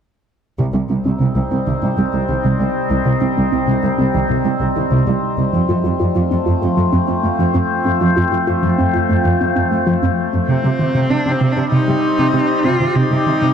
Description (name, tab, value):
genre	cinematic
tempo	97 BPM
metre	4/4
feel	straight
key	C dorian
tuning	A4 = 443 Hz
part	overtone-sweeping drone	sustained chords	1.0-13.5 s	G3 to C5	-19 LUFS	left 2 dB	chorus, built-in reverb
part	warbly dusty pluck	arpeggios	0.6-13.5 s	C3 to F4	-20 LUFS	right 1 dB	chorus, digital delay
part	rich symphonic cello section	bass	0.6-13.5 s	C2 to C3	-18 LUFS	right 2 dB	none
part	rich cello	melody	10.5-13.5 s	C4 to F4	-18 LUFS	right 1 dB	digital delay
room	moderate scoring stage reverb, RT60 1.9 s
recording	none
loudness	-14 LUFS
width	side -8 dB against mid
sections	0.6-10.5 A section; 10.5-13.5 B section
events	none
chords	0.6 Cm; 5.5 F; 10.5 Cm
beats	| 0.59 1.21 1.82 2.44 | 3.06 3.68 4.30 4.92 | 5.54 6.16 6.77 7.39 | 8.01 8.63 9.25 9.87 | 10.48 11.10 11.72 12.34 | 12.96